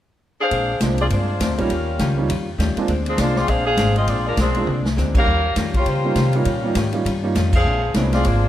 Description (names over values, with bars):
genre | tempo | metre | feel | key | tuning
jazz, big band swing | 202 BPM | 4/4 | swing 60% on 8ths | Bb mixolydian | A4 = 440 Hz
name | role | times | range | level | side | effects
mellow saxophone section | melody | 0.4-8.5 s | F3 to F5 | -22 LUFS | left 1 dB | none
archtop guitar, miked and amplified | accompaniment | 0.5-8.4 s | Bb2 to F4 | -28 LUFS | left 4 dB | none
upright bass | bass | 0.5-8.5 s | Ab1 to Db3 | -21 LUFS | equal | none
swinging big-band drum kit | drums | 0.5-8.3 s | crash cymbal, hi-hat, kick drum, ride cymbal, snare drum, toms | -24 LUFS | left 1 dB | none
warm baby grand piano | accompaniment | 0.8-8.4 s | G3 to G4 | -25 LUFS | right 4 dB | none
room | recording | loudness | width
light reverb | none | -17 LUFS | side -12 dB against mid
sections
0.5-8.5 A section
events
drum fill 4.7; band accent 5.1, 7.5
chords
0.0 Dm; 0.5 Bb9; 1.7 Eb9; 2.9 Bb9; 5.3 Eb9; 7.6 Bb9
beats
0.21 | 0.51 0.81 1.10 1.40 | 1.70 1.99 2.29 2.59 | 2.88 3.18 3.48 3.78 | 4.08 4.37 4.67 4.97 | 5.26 5.56 5.86 6.16 | 6.46 6.75 7.05 7.35 | 7.65 7.95 8.25